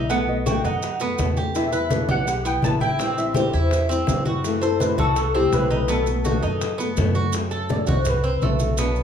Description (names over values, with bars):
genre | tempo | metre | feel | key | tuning
latin, Cuban son and guajira | 166 BPM | 4/4 | straight | unclear | A4 = 440 Hz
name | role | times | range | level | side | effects
overdriven tine electric piano | melody | 0.0-8.6 s | G4 to A5 | -25 LUFS | left 1 dB | ensemble chorus
flamenco guitar | accompaniment | 0.0-9.0 s | B2 to F#4 | -27 LUFS | left 3 dB | none
Cuban tres | arpeggios | 0.0-9.0 s | A3 to C5 | -27 LUFS | right 4 dB | none
upright bass | bass | 0.0-9.0 s | A1 to F#2 | -25 LUFS | equal | none
bongos | percussion | 0.1-9.0 s | none | -32 LUFS | left 6 dB | none
congas | percussion | 0.1-9.0 s | none | -27 LUFS | equal | none
maracas | percussion | 0.1-9.0 s | none | -36 LUFS | right 5 dB | none
room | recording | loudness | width
moderate large studio reverb, RT60 0.9 s | small room ambience | -19 LUFS | side -8 dB against mid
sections
0.0-7.3 A section; 7.3-9.0 B section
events
tine electric piano solo 7.3-9.0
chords
0.1 B7; 1.5 Em; 3.0 Am7; 4.4 F#m7b5; 5.9 B7; 7.3 F#dim